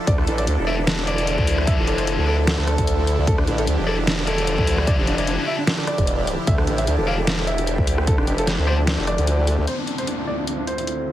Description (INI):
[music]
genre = heavy wobble dubstep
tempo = 150 BPM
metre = 4/4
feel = swing 55% on 16ths, half-time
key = D minor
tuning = A4 = 440 Hz
[part]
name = supersaw pad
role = sustained chords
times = 0.0-11.1 s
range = D2 to A4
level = -27 LUFS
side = right 1 dB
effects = phaser, sidechain pumping, low-pass filter
[part]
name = warm concert grand piano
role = melody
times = 0.1-11.1 s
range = D4 to F5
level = -27 LUFS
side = equal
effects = digital delay
[part]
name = formant-sweep wobble bass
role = bass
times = 0.1-9.7 s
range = E1 to D2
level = -22 LUFS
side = equal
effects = chorus, overdrive
[part]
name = dubstep drum kit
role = drums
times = 0.1-11.0 s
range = hi-hat, rim click, snare drum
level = -25 LUFS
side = equal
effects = none
[part]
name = electronic kick drum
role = drums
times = 0.1-8.2 s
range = none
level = -21 LUFS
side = equal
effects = none
[part]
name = tight distorted guitar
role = stabs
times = 0.7-8.7 s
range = F3 to D5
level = -27 LUFS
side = left 5 dB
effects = distortion, digital delay
[part]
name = downlifter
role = sound effects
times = 9.7-11.1 s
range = none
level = -28 LUFS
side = left 2 dB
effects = none
[sound]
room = light reverb, digital ambience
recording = heavily compressed radio sound, multiband compression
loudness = -18 LUFS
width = side -13 dB against mid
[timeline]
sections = 0.0-9.7 A section; 9.7-11.1 B section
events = drop 0.0-9.7; kick drops out 8.9-9.7; filter sweep on supersaw synth 9.7-11.1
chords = 0.0 Dmadd9; 9.7 Dm7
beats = | 0.07 0.47 0.87 1.27 | 1.67 2.07 2.47 2.87 | 3.27 3.67 4.07 4.47 | 4.87 5.27 5.67 6.07 | 6.47 6.87 7.27 7.67 | 8.07 8.47 8.87 9.27 | 9.67 10.07 10.47 10.87